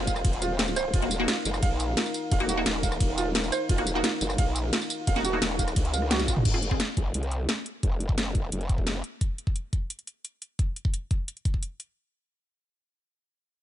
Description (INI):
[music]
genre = dark technical drum and bass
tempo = 174 BPM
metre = 4/4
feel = straight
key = F phrygian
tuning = A4 = 444 Hz
[part]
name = dark analog pad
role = sustained chords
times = 0.0-6.4 s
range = Eb4 to F5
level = -36 LUFS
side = left 1 dB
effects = chorus, sidechain pumping
[part]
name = filtered dub chord stab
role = stabs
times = 0.0-6.8 s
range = Bb3 to Ab4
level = -33 LUFS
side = equal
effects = phaser, tape echo
[part]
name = growl bass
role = bass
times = 0.0-9.0 s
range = Eb1 to Db2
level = -30 LUFS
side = equal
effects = chorus
[part]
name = felt-muted upright piano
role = arpeggios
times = 0.1-6.3 s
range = F4 to F5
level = -32 LUFS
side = right 5 dB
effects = sidechain pumping, tape echo
[part]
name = drum and bass drum kit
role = drums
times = 0.1-11.9 s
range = crash cymbal, hi-hat, ride cymbal, rim click, snare drum, tambourine, toms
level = -29 LUFS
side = equal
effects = none
[part]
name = electronic kick drum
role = drums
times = 0.1-11.6 s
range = none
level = -26 LUFS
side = equal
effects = none
[sound]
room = little or no reverb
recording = nothing above 10.9 kHz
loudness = -24 LUFS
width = side -12 dB against mid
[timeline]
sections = 0.0-6.5 A section; 6.5-12.0 B section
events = drop 0.0-6.5; drum fill 6.1-6.5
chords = 0.0 Fm; 0.9 Ebm; 6.5 F5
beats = 0.25 0.59 | 0.94 1.28 1.63 1.97 | 2.31 2.66 3.00 3.35 | 3.69 4.04 4.38 4.73 | 5.07 5.42 5.76 6.11 | 6.45 6.80 7.14 7.49 | 7.83 8.18 8.52 8.87 | 9.21 9.56 9.90 10.25 | 10.59 10.94 11.28 11.63